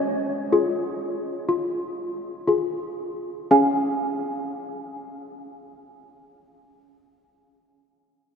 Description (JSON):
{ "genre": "classical, tune for handbells", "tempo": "58-65 BPM", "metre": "4/4", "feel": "straight", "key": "Db major", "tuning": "A4 = 441 Hz", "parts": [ { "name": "malleted handbells", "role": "solo", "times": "0.0-6.5 s", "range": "Db4 to Ab5", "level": "-22 LUFS", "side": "left 1 dB", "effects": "none" } ], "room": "wet cathedral reverb, RT60 5.0 s", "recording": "in a vast, echoing space", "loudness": "-22 LUFS", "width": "side -6 dB against mid", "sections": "0.0-3.5 A section; 3.5-7.6 B section", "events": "slowing down 0.0-3.5", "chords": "0.0 Db" }